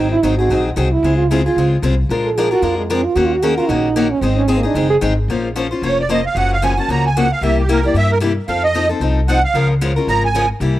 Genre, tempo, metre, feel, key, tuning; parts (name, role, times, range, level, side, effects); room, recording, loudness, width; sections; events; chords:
acoustic string swing (jazz manouche); 226 BPM; 4/4; swing 57% on 8ths; Bb minor from 5.3 s; A4 = 440 Hz
mellow French horn; second line; 0.0-5.0 s; Ab3 to A4; -17 LUFS; right 4 dB
picked steel-string acoustic guitar; accompaniment; 0.0-10.8 s; C3 to C5; -19 LUFS; left 4 dB
upright bass; bass; 0.0-10.8 s; F1 to G2; -18 LUFS; equal
musette accordion; melody; 5.9-10.5 s; G4 to Bb5; -18 LUFS; right 4 dB
light reverb, studio reverb; dry, close 1970s-style studio recording; -14 LUFS; side -14 dB against mid
0.0-5.3 A section; 5.3-10.8 A section
French horn solo 0.0-5.3; accordion solo 5.3-10.8
0.0 Ab7; 1.0 Dbmaj7; 2.1 Bb7; 3.2 Ebm7; 4.2 Ab; 5.3 Bbmadd9; 6.4 Gbmaj7; 7.4 C7; 8.5 F7; 9.5 Db6